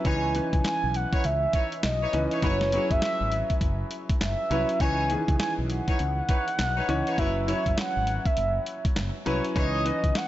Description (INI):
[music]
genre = R&B, new jack swing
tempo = 101 BPM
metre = 4/4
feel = swing 62% on 16ths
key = C# minor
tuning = A4 = 441 Hz
[part]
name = mellow horn-like synth lead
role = melody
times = 0.0-10.3 s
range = C#5 to G#5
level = -28 LUFS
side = right 1 dB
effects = chorus
[part]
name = warm concert grand piano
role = accompaniment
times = 0.0-10.3 s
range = D#3 to C#5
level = -31 LUFS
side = left 1 dB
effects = none
[part]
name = clear horn section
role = stabs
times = 0.0-9.8 s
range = D#4 to C#5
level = -35 LUFS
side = left 1 dB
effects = none
[part]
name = boom bap sampler-style drum kit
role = drums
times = 0.0-10.3 s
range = handclaps, hi-hat, kick drum, snare drum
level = -28 LUFS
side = equal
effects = none
[part]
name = mellow fretless electric bass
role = bass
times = 0.1-10.2 s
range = F#1 to C#2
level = -29 LUFS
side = equal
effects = analog chorus
[sound]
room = light reverb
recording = nothing above 7.8 kHz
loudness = -23 LUFS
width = side -14 dB against mid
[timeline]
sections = 0.0-10.3 A section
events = none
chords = 0.1 C#m9; 2.4 F#7sus4; 4.8 C#m9; 7.2 F#7sus4; 9.6 C#m9